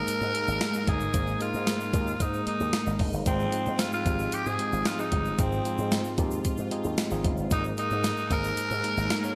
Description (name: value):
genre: 1980s-style pop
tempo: 113 BPM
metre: 4/4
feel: straight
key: unclear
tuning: A4 = 438 Hz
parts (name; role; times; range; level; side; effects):
- raspy tenor saxophone; melody; 0.0-9.3 s; C4 to Bb4; -33 LUFS; equal; none
- tine electric piano; accompaniment; 0.0-9.3 s; Ab2 to Db5; -34 LUFS; equal; none
- sweeping resonant pad; sustained chords; 0.0-9.3 s; F3 to F4; -40 LUFS; equal; none
- slap bass with an envelope filter; bass; 0.1-9.1 s; Gb1 to Ab2; -35 LUFS; equal; none
- clean 12-bit digital drum machine; drums; 0.1-9.2 s; hi-hat, kick drum, snare drum, tambourine; -32 LUFS; equal; gated reverb
- tube shaker; percussion; 0.1-9.3 s; none; -48 LUFS; equal; none
room: moderate lush hall reverb, RT60 1.7 s, digital ambience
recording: bright 1980s-style digital production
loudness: -28 LUFS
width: mono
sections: 0.0-9.3 A section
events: none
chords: 0.0 Absus2; 3.3 Fm7; 7.5 Absus2